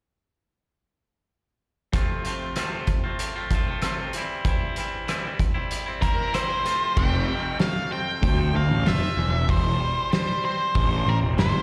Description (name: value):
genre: quiet-loud alternative rock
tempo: 95 BPM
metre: 4/4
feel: straight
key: F major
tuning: A4 = 444 Hz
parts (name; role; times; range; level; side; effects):
- twangy electric guitar; arpeggios; 1.9-11.6 s; F2 to F4; -32 LUFS; equal; plate reverb, slapback echo
- loose indie drum kit; drums; 1.9-11.5 s; crash cymbal, hi-hat, kick drum, rim click, snare drum; -28 LUFS; equal; none
- octave-fuzz lead guitar; melody; 6.0-11.6 s; Bb4 to G5; -29 LUFS; equal; distortion, plate reverb, slapback echo
- fuzz picked electric bass; bass; 7.0-11.5 s; E1 to D2; -25 LUFS; equal; overdrive
room: light reverb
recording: live gig heard through the venue's PA, recital hall reverb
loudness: -24 LUFS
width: mono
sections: 1.9-7.0 A section; 7.0-11.6 B section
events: none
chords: 1.9 F; 4.1 C/E; 6.7 F; 9.2 C/E